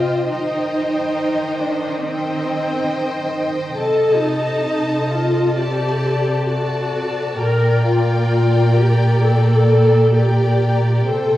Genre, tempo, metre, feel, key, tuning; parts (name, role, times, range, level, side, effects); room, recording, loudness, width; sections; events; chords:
classical, slow romantic movement for string orchestra; 67 BPM; 4/4; uneven beats, rubato; C minor, G minor from 3.8 s; A4 = 441 Hz
rich studio violin section; melody; 0.0-11.4 s; G5 to A5; -28 LUFS; left 2 dB
rich studio violin section; second line; 0.0-11.4 s; A4 to Eb5; -23 LUFS; left 2 dB
rich studio viola section; accompaniment; 0.0-11.4 s; C4 to Bb4; -20 LUFS; left 1 dB
rich studio cello section; bass; 0.0-11.4 s; Bb2 to Eb3; -18 LUFS; right 1 dB
wet scoring stage reverb, RT60 1.5 s; heard from further back in the room, vinyl crackle, small room ambience; -15 LUFS; side -14 dB against mid
0.0-11.4 A section
0.3 Cm/Eb; 3.8 Adim/C; 5.6 D7/C; 7.4 Gm/Bb